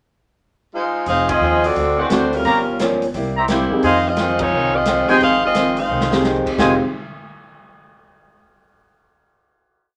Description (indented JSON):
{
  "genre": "jazz, big band swing",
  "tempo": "174 BPM",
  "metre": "4/4",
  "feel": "swing 65% on 8ths",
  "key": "F minor",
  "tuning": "A4 = 440 Hz",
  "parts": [
    { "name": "warm saxophone section", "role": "melody", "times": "0.7-6.2 s", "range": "G3 to G5", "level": "-20 LUFS", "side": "equal", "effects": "none" },
    { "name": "picked steel-string acoustic guitar", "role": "accompaniment", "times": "1.1-6.8 s", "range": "F2 to Ab4", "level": "-25 LUFS", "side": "equal", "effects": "none" },
    { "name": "upright bass", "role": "bass", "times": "1.1-6.8 s", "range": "F1 to F2", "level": "-29 LUFS", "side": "equal", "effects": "none" },
    { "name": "swinging big-band drum kit", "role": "drums", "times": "1.1-6.7 s", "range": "crash cymbal, hi-hat, kick drum, ride cymbal, snare drum", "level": "-28 LUFS", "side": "equal", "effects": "none" },
    { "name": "clear trumpet section", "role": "stabs", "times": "1.3-6.7 s", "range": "F4 to Bb5", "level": "-22 LUFS", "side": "equal", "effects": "none" },
    { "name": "warm baby grand piano", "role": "accompaniment", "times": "2.1-6.8 s", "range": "Ab3 to G4", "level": "-22 LUFS", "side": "equal", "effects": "none" }
  ],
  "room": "wet club ambience, RT60 0.5 s",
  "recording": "none",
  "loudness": "-17 LUFS",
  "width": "mono",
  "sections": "0.0-1.1 pickup bar; 1.1-6.6 A section; 6.6-8.0 final chord",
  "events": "band accent 1.2, 4.3; drum fill 5.9-6.2",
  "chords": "0.0 Fm7; 1.8 D7; 2.4 Gm7b5; 3.1 C7; 3.8 Fm7",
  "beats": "0.03 0.38 0.72 | 1.07 1.41 1.76 2.10 | 2.45 2.79 3.14 3.48 | 3.83 4.17 4.52 4.86 | 5.20 5.55 5.89 6.24 | 6.58"
}